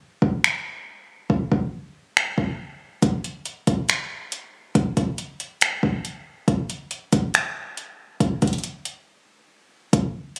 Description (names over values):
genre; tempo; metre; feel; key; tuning
hip hop; 139 BPM; 4/4; half-time; none; none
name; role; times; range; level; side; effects
smooth R&B drum kit; drums; 0.2-10.4 s; finger snaps, hi-hat, kick drum; -23 LUFS; equal; none
room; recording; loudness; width
light reverb; recorded on a phone in the room, club ambience, compression; -24 LUFS; mono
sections
0.0-9.9 A section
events
break 0.0-3.0, 9.1-9.9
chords
none